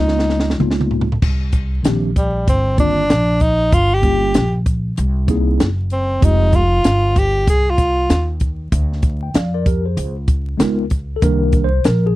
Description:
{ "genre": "hip hop, jazz-hop", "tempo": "96 BPM", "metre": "4/4", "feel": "swing 62% on 16ths", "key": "C minor", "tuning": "A4 = 441 Hz", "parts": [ { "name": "breathy tenor saxophone", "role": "melody", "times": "0.0-8.3 s", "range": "G3 to Ab4", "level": "-17 LUFS", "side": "equal", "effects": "none" }, { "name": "mellow tine electric piano", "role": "accompaniment", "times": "0.0-12.2 s", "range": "Eb3 to G5", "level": "-20 LUFS", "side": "equal", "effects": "medium stereo tremolo" }, { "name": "upright bass", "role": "bass", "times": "0.0-12.2 s", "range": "F1 to F2", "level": "-18 LUFS", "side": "equal", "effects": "none" }, { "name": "compact cocktail drum kit", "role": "drums", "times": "0.1-12.0 s", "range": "crash cymbal, hi-hat, kick drum, snare drum, toms", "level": "-17 LUFS", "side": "equal", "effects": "none" } ], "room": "little or no reverb", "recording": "dry, close 1970s-style studio recording, vinyl crackle", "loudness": "-14 LUFS", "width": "side -17 dB against mid", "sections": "0.0-1.2 A section; 1.2-11.2 B section", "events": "drum fill 0.0-1.2; tenor saxophone solo 1.2-11.2", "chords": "0.0 Db13; 1.2 Cm9; 3.7 Gm7b5; 5.0 C7alt; 6.2 Fm9; 8.7 Dmadd11; 10.0 Db13; 11.2 Cm9" }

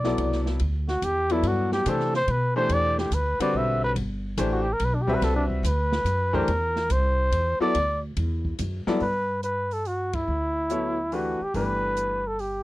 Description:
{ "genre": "modal jazz", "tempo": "143 BPM", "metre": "3/4", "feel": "swing 66% on 8ths", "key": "C lydian, G lydian from 9.0 s", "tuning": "A4 = 439 Hz", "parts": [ { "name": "dark trumpet", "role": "melody", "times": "0.0-12.6 s", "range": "D4 to E5", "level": "-26 LUFS", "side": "equal", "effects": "none" }, { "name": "bright upright piano", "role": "accompaniment", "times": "0.0-12.2 s", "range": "G2 to E5", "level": "-27 LUFS", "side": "left 2 dB", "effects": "none" }, { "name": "upright bass", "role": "bass", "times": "0.0-12.6 s", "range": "G1 to C3", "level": "-27 LUFS", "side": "equal", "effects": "none" }, { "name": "open jazz drum kit", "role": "drums", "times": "0.0-12.5 s", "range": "hi-hat, kick drum, ride cymbal, snare drum", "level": "-36 LUFS", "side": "right 1 dB", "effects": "none" } ], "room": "little or no reverb", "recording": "dry, close 1970s-style studio recording", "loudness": "-23 LUFS", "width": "side -17 dB against mid", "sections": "0.0-9.0 A section; 9.0-12.6 B section", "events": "trumpet solo 0.0-9.0; band accent 10.1", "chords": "0.0 Cmaj9; 7.8 Dadd9; 9.0 G69" }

